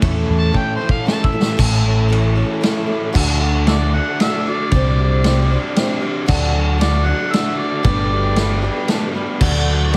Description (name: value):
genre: folk rock and heartland rock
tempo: 115 BPM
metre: 3/4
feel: straight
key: D mixolydian from 3.2 s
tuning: A4 = 440 Hz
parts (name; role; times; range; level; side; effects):
- picked twelve-string acoustic guitar; accompaniment; 0.0-10.0 s; A2 to D5; -26 LUFS; equal; none
- tonewheel organ; sustained chords; 0.0-10.0 s; C#4 to D5; -36 LUFS; equal; none
- overdriven electric guitar; riff; 0.0-10.0 s; G2 to A4; -27 LUFS; equal; tape echo
- picked electric bass; bass; 0.0-10.0 s; G1 to E2; -19 LUFS; equal; none
- vintage drum kit; drums; 0.0-10.0 s; crash cymbal, kick drum, ride cymbal, snare drum; -22 LUFS; equal; none
- overdriven harmonica; melody; 0.4-10.0 s; F#4 to A5; -26 LUFS; equal; tape echo
room: little or no reverb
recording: echo-heavy mix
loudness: -17 LUFS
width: mono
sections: 0.0-1.6 A section; 1.6-3.2 B section; 3.2-10.0 C section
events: harmonica solo 0.0-1.6; drum fill 0.6-1.6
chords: 0.0 A; 3.2 D; 4.7 Csus2; 6.3 D; 7.8 Gadd9; 9.4 D